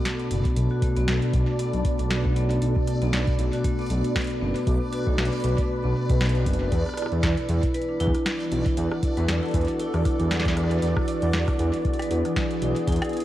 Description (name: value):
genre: IDM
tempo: 117 BPM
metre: 4/4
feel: swing 56% on 16ths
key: B dorian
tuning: A4 = 441 Hz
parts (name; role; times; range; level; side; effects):
- glassy FM pad; sustained chords; 0.0-13.2 s; B2 to D5; -29 LUFS; equal; ensemble chorus, built-in reverb
- vibraphone with medium hard mallets; arpeggios; 0.0-13.2 s; A3 to B4; -29 LUFS; equal; digital delay
- backwards swelling texture; texture; 0.0-13.2 s; D5; -38 LUFS; right 5 dB; built-in reverb
- electro analog drum machine; drums; 0.1-13.2 s; hi-hat, rim click, snare drum; -32 LUFS; equal; digital delay
- dark detuned saw bass; bass; 0.3-13.0 s; F#1 to E2; -25 LUFS; equal; tube saturation
- electronic kick drum; drums; 0.5-13.0 s; none; -26 LUFS; equal; none
room: light reverb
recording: worn, warbling old tape, cassette tape, warbly pitch drift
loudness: -22 LUFS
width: side -14 dB against mid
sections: 0.0-13.2 A section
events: none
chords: 0.0 Bm7; 6.7 E7sus4